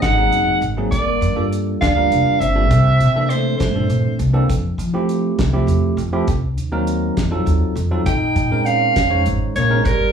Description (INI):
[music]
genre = electric jazz fusion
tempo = 67 BPM (dotted quarters)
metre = 6/8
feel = straight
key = F mixolydian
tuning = A4 = 440 Hz
[part]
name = warm soprano saxophone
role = melody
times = 0.0-4.2, 8.1-10.1 s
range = Bb4 to G5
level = -19 LUFS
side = right 2 dB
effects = slapback echo
[part]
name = breathy trombone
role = second line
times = 0.0-4.2, 8.1-10.1 s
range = G3 to Eb4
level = -25 LUFS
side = left 3 dB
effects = slapback echo
[part]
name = upright bass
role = bass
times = 0.0-10.1 s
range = F1 to F3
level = -19 LUFS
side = equal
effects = none
[part]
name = damped 70s drum kit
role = drums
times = 0.0-10.0 s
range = hi-hat, kick drum, snare drum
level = -22 LUFS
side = equal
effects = none
[part]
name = bell-like tine electric piano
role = accompaniment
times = 0.2-9.9 s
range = Bb2 to Db5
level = -22 LUFS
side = right 2 dB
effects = slapback echo
[sound]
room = light reverb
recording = live gig heard through the venue's PA, club reverb, studio ambience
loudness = -15 LUFS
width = side -7 dB against mid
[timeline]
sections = 0.0-10.1 A section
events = none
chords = 0.0 Ab9; 0.9 Gm9; 2.7 C13; 4.5 Fmaj9; 6.3 Cm7b5; 7.2 F7b9; 8.1 Bbm11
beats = 0.03 | 0.92 1.81 | 2.71 3.60 | 4.49 5.39 | 6.28 7.17 | 8.07 8.96 | 9.85